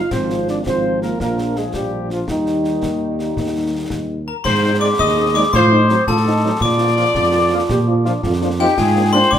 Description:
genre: military-style march for wind band.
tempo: 111 BPM (dotted quarters).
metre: 6/8.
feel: straight.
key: unclear.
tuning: A4 = 440 Hz.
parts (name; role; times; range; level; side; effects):
dark trumpet section; melody; 0.0-9.4 s; Eb4 to F5; -21 LUFS; left 2 dB; none.
warm euphonium; second line; 0.0-9.4 s; Eb3 to Ab4; -22 LUFS; right 4 dB; none.
mellow tuba; bass; 0.0-9.4 s; Ab1 to Bb2; -20 LUFS; right 2 dB; none.
mellow French horn section; accompaniment; 0.1-9.2 s; F3 to F4; -24 LUFS; left 5 dB; none.
warm trombone section; sustained chords; 0.1-9.2 s; F3 to F4; -26 LUFS; right 1 dB; none.
concert snare drum, clash cymbals and concert bass drum; drums; 0.1-9.4 s; none; -27 LUFS; left 1 dB; none.
glockenspiel with brass mallets; second line; 4.3-9.4 s; G5 to Eb6; -19 LUFS; left 4 dB; none.
room: moderate large studio reverb, RT60 0.9 s.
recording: none.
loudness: -15 LUFS.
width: side -9 dB against mid.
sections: 0.0-4.4 A section; 4.4-9.4 B section.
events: none.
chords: 0.1 Fm/Ab; 1.2 Bb; 2.3 Eb; 4.4 Ab; 5.5 Adim7; 6.6 Bb; 8.8 Bb7/Ab.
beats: | 0.12 0.66 | 1.20 1.74 | 2.28 2.82 | 3.37 3.91 | 4.45 4.99 | 5.53 6.07 | 6.61 7.15 | 7.70 8.24 | 8.78 9.32.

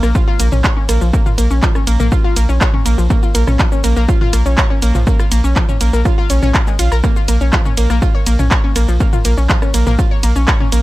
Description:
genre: melodic techno.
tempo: 122 BPM.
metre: 4/4.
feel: straight.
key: Bb minor.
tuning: A4 = 439 Hz.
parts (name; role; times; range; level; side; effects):
analog pluck; arpeggios; 0.0-10.8 s; F3 to Db5; -19 LUFS; equal; chorus, sidechain pumping, analog delay.
round analog bass; bass; 0.0-10.8 s; Bb1; -13 LUFS; equal; sidechain pumping.
punchy analog drum machine; drums; 0.0-10.8 s; handclaps, hi-hat, ride cymbal, rim click, shaker, toms; -20 LUFS; equal; none.
electronic kick drum; drums; 0.1-10.6 s; none; -15 LUFS; equal; none.
room: little or no reverb.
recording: dry, gritty hardware recording.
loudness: -11 LUFS.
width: side -17 dB against mid.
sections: 0.0-10.8 A section.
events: none.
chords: 0.0 Bbm.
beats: 0.15 0.64 | 1.13 1.63 2.12 2.61 | 3.10 3.59 4.08 4.58 | 5.07 5.56 6.05 6.54 | 7.04 7.53 8.02 8.51 | 9.00 9.49 9.99 10.48.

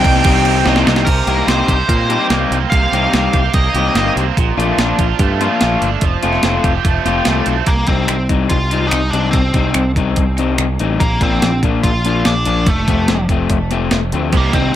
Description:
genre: indie rock.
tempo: 145 BPM.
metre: 4/4.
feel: straight.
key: C dorian.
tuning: A4 = 437 Hz.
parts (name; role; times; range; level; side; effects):
nasal lead guitar with a parked wah; melody; 0.0-4.1, 7.7-14.8 s; A3 to G5; -20 LUFS; equal; overdrive, tape echo.
dark analog pad; sustained chords; 0.0-1.0 s; none; barely audible; none; none.
crunchy overdriven guitar; riff; 0.0-14.8 s; F3 to G4; -19 LUFS; left 7 dB; tape echo.
overdriven electric guitar; riff; 0.0-7.7, 14.3-14.7 s; Bb2 to G4; -19 LUFS; right 10 dB; analog chorus, tape echo.
picked electric bass; bass; 0.0-14.7 s; F1 to Bb2; -18 LUFS; right 1 dB; none.
clean 12-bit digital drum machine; drums; 0.0-14.6 s; crash cymbal, finger snaps, hi-hat, kick drum, snare drum; -18 LUFS; right 1 dB; overdrive, tape echo.
room: light reverb.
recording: echo-heavy mix.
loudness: -12 LUFS.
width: side -12 dB against mid.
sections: 0.0-1.1 A section; 1.1-7.7 B section; 7.7-14.8 C section.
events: drum fill 0.7-1.1.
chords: 0.0 Cm; 1.1 Cm7; 4.4 Bbmaj7; 6.0 Fadd9; 7.7 Cm; 11.0 Bb; 12.7 F.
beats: 0.25 0.66 | 1.07 1.48 1.90 2.31 | 2.72 3.13 3.54 3.96 | 4.37 4.78 5.20 5.61 | 6.02 6.44 6.85 7.27 | 7.68 8.10 8.51 8.93 | 9.34 9.76 10.18 10.59 | 11.01 11.43 11.84 12.26 | 12.68 13.09 13.51 13.92 | 14.34.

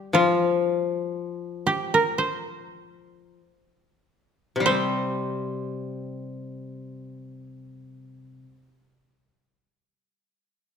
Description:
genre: japanese traditional, Japanese chamber music.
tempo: 44-65 BPM.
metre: 4/4.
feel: rubato.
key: unclear.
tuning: A4 = 440 Hz.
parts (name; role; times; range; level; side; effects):
koto; melody; 0.0-8.5 s; F4 to C5; -23 LUFS; right 3 dB; none.
koto; accompaniment; 0.0-8.5 s; C3 to C4; -26 LUFS; left 4 dB; none.
room: wet scoring stage reverb, RT60 1.6 s.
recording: none.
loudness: -23 LUFS.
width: side -7 dB against mid.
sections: 0.0-4.7 A section; 4.7-9.9 B section.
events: slowing down 0.0-4.7.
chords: none.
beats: | 0.15 1.13 2.20 3.39 | 4.70 6.00 7.26 8.54.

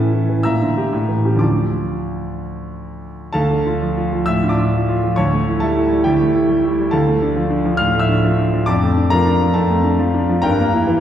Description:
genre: classical, virtuoso piano study.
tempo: 120-140 BPM.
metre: 4/4.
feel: rubato.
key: D minor.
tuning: A4 = 440 Hz.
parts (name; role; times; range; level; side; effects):
clear concert grand piano; solo; 0.0-11.0 s; D2 to F6; -15 LUFS; equal; none.
room: wet concert hall reverb, RT60 1.7 s.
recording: heard from further back in the room.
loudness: -14 LUFS.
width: side -10 dB against mid.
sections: 0.0-3.3 A section; 3.3-11.0 A section.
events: none.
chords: 0.5 Gm/Bb; 0.9 A7; 1.4 Dm; 5.2 A7/D; 6.9 Dm; 8.7 Dm/F; 10.4 Edim/G.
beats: 0.45 0.93 | 1.41 1.89 2.38 2.86 | 3.35 3.82 4.28 4.74 | 5.19 5.63 6.06 6.50 | 6.94 7.37 7.80 8.24 | 8.69 9.12 9.56 10.00 | 10.44 10.87.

